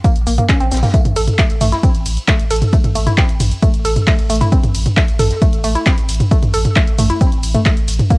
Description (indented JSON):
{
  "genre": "driving peak-time techno",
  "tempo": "134 BPM",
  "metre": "4/4",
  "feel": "straight",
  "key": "A minor",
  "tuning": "A4 = 440 Hz",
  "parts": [
    { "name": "woody wave-folded pluck", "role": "riff", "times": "0.0-8.1 s", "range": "A3 to A4", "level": "-20 LUFS", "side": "equal", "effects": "chorus, sidechain pumping, tape echo" },
    { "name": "electronic kick drum", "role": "drums", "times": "0.0-8.2 s", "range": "none", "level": "-13 LUFS", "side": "equal", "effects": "overdrive, cassette tape" },
    { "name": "punchy analog drum machine", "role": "drums", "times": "0.0-8.2 s", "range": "handclaps, hi-hat, ride cymbal, shaker, toms", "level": "-17 LUFS", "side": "equal", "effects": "overdrive, cassette tape" },
    { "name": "warm soul drum kit", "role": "drums", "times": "0.0-8.2 s", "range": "hi-hat, snare drum, tambourine", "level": "-36 LUFS", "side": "right 1 dB", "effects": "none" },
    { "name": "saturated sub bass", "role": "bass", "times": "0.2-8.0 s", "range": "A1 to Bb1", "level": "-18 LUFS", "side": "equal", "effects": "overdrive, sidechain pumping, low-pass filter" }
  ],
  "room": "little or no reverb",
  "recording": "home recording on cassette",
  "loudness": "-12 LUFS",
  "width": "side -23 dB against mid",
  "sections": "0.0-8.2 A section",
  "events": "none",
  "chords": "none"
}